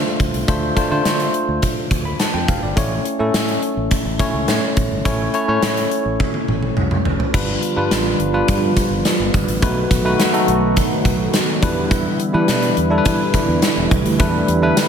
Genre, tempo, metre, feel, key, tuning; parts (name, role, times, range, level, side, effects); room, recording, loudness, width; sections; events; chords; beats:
1980s-style pop; 105 BPM; 4/4; straight; D dorian; A4 = 440 Hz
barky tine electric piano; accompaniment; 0.0-14.9 s; G3 to B5; -20 LUFS; left 2 dB; auto-pan
fretless electric bass; bass; 0.2-14.7 s; E1 to E3; -23 LUFS; equal
gated 80s drum kit; drums; 0.2-14.9 s; crash cymbal, hi-hat, kick drum, snare drum, tambourine, toms; -19 LUFS; equal
brassy analog pad; sustained chords; 7.3-14.9 s; D3 to F#4; -21 LUFS; right 3 dB; chorus
moderate lush hall reverb, RT60 1.8 s, studio ambience; dreamy mix soaked in reverb; -15 LUFS; side -7 dB against mid
0.0-7.3 A section; 7.3-14.9 B section
drum fill 6.2-7.3
0.0 Dm7; 2.8 A; 7.3 G7; 9.6 B7; 11.6 Em7
| 0.48 1.05 1.63 2.20 | 2.77 3.34 3.91 4.48 | 5.05 5.63 6.20 6.77 | 7.34 7.91 8.48 9.05 | 9.63 10.20 10.77 11.34 | 11.91 12.48 13.05 13.63 | 14.20 14.77